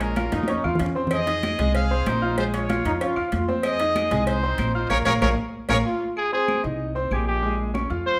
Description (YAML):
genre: latin, salsa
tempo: 190 BPM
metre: 4/4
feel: straight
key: unclear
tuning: A4 = 440 Hz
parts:
  - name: clear trumpet section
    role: melody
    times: 0.0-5.8 s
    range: Db4 to F5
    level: -28 LUFS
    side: equal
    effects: none
  - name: bright grand piano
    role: accompaniment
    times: 0.0-8.2 s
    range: Ab3 to Ab6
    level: -29 LUFS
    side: equal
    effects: none
  - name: upright bass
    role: bass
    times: 0.0-8.2 s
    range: Bb1 to F2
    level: -30 LUFS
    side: equal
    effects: none
  - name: congas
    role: percussion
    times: 0.0-8.2 s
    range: none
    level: -32 LUFS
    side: equal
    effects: none
  - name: cowbell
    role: percussion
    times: 0.0-5.8 s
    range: none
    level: -35 LUFS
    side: equal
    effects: none
  - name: claves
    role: percussion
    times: 0.2-7.9 s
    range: none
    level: -39 LUFS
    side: equal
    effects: none
  - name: clear trombone section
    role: second line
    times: 0.3-3.5, 5.7-6.1 s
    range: Db4 to F4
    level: -31 LUFS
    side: equal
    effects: none
  - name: clear trumpet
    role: melody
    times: 6.2-8.2 s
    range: G4 to C5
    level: -26 LUFS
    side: equal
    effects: none
room: moderate large studio reverb, RT60 1.1 s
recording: none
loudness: -23 LUFS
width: mono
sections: 0.0-6.2 A section; 6.2-8.2 B section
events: drum fill 0.3-1.1; band accent 4.9-6.2; trumpet solo 6.2-8.2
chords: 0.0 Bbm7; 1.1 Fm7; 2.4 Bbm7; 3.6 Fm7; 4.9 Bbm; 6.2 Bb13sus4; 7.4 Bbm7